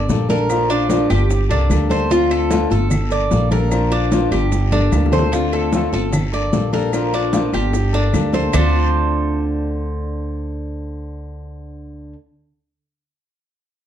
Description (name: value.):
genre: latin, Cuban son and guajira.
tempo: 149 BPM.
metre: 4/4.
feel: straight.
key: D minor.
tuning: A4 = 441 Hz.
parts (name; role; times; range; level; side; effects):
flamenco guitar; accompaniment; 0.0-12.2 s; D3 to A4; -22 LUFS; left 5 dB; none.
Cuban tres; arpeggios; 0.0-12.1 s; D4 to D5; -22 LUFS; right 3 dB; none.
upright bass; bass; 0.0-12.1 s; G1 to D2; -20 LUFS; right 1 dB; none.
bongos; percussion; 0.1-8.6 s; none; -28 LUFS; left 4 dB; none.
congas; percussion; 0.1-8.6 s; none; -24 LUFS; equal; none.
guiro; percussion; 0.1-8.6 s; none; -36 LUFS; left 8 dB; none.
maracas; percussion; 0.1-8.6 s; none; -36 LUFS; right 9 dB; none.
claves; percussion; 0.5-8.6 s; none; -35 LUFS; left 4 dB; none.
room: light reverb.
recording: dark, warm production.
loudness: -15 LUFS.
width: side -10 dB against mid.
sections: 0.0-5.3 A section; 5.3-8.5 B section; 8.5-11.8 C section.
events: drum fill 4.7-5.3.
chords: 0.5 Bb; 1.3 Gmadd9; 2.1 Dm7; 2.9 Gmadd9; 3.7 Bb; 4.5 Gmadd9; 5.3 Dm7; 6.1 Gmadd9; 6.9 Bb; 7.7 Gmadd9; 8.5 Dm7.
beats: 0.10 | 0.50 0.90 1.30 1.70 | 2.10 2.51 2.91 3.31 | 3.71 4.12 4.52 4.92 | 5.32 5.72 6.13 6.53 | 6.93 7.33 7.73 8.14 | 8.54 8.94 9.34 9.74 | 10.14 10.55 10.95 11.35.